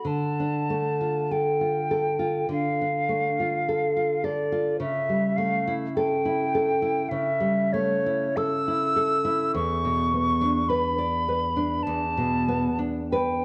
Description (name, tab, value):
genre	romantic duo for flute and classical guitar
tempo	43-53 BPM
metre	4/4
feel	rubato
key	D minor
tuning	A4 = 440 Hz
part	bright concert flute	melody	0.0-13.4 s	C#5 to E6	-29 LUFS	equal	none
part	nylon-string guitar	accompaniment	0.0-13.4 s	E2 to D5	-27 LUFS	equal	none
room	wet recital hall reverb, RT60 1.3 s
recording	worn, warbling old tape, cassette tape, warbly pitch drift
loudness	-25 LUFS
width	mono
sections	0.1-13.4 A section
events	none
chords	0.1 Dm; 4.8 A7/C#; 9.6 E5